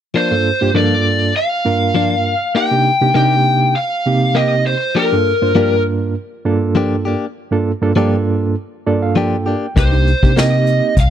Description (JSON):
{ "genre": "straight-eighth soul blues", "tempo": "100 BPM", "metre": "4/4", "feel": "swing 54% on 16ths", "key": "G minor", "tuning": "A4 = 440 Hz", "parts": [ { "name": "direct-recorded clean electric guitar", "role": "stabs", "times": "0.1-10.6 s", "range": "F3 to G4", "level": "-18 LUFS", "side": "left 5 dB", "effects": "none" }, { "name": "lead guitar through a small cranked amp", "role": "melody", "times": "0.2-5.8, 9.8-11.1 s", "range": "Bb4 to G5", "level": "-16 LUFS", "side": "left 1 dB", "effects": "overdrive" }, { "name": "bright reed electric piano", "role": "accompaniment", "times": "0.3-10.9 s", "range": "G2 to G5", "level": "-16 LUFS", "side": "right 3 dB", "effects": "fast tremolo" }, { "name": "vintage muted fingered electric bass", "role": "bass", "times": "9.8-11.1 s", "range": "C2 to C3", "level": "-14 LUFS", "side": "left 1 dB", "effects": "none" }, { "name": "vintage brush drum kit", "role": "drums", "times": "9.8-11.1 s", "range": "hi-hat, kick drum, snare drum", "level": "-14 LUFS", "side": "left 1 dB", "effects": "none" } ], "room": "studio ambience", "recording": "dry, close 1970s-style studio recording", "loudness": "-13 LUFS", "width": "side -10 dB against mid", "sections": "0.1-11.1 A section", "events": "reed electric piano fill 8.6-9.8", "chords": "0.1 Gm7; 2.6 Cm7; 5.0 Gm7; 9.8 Cm7", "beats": "| 0.15 0.75 1.35 1.95 | 2.55 3.16 3.76 4.36 | 4.96 5.56 6.16 6.76 | 7.37 7.97 8.57 9.17 | 9.77 10.37 10.97" }